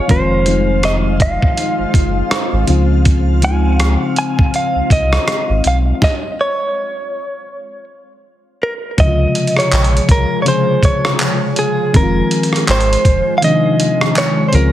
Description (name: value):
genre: contemporary R&B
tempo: 81 BPM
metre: 4/4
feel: swing 58% on 16ths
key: Db major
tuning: A4 = 444 Hz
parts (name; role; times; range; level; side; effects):
- direct-recorded clean electric guitar; melody; 0.0-14.7 s; Ab4 to Ab5; -18 LUFS; right 1 dB; spring reverb, tape echo
- mellow FM electric piano; accompaniment; 0.0-14.7 s; C3 to Ab4; -18 LUFS; left 3 dB; chorus
- glassy FM pad; sustained chords; 0.0-14.7 s; Eb3 to F5; -22 LUFS; equal; ensemble chorus, built-in reverb
- sub bass with octave; bass; 0.1-14.7 s; F1 to Db2; -15 LUFS; equal; none
- dusty soul sampler-style drum kit; drums; 0.1-14.7 s; handclaps, hi-hat, kick drum, rim click, snare drum; -16 LUFS; equal; none
room: little or no reverb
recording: heavily compressed radio sound, multiband compression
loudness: -12 LUFS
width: side -12 dB against mid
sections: 0.0-9.0 A section; 9.0-14.7 B section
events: stop 6.0-9.0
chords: 0.1 Fm7; 2.7 Dbmaj7; 6.0 N.C.; 9.0 Dbmaj7; 11.9 Fm7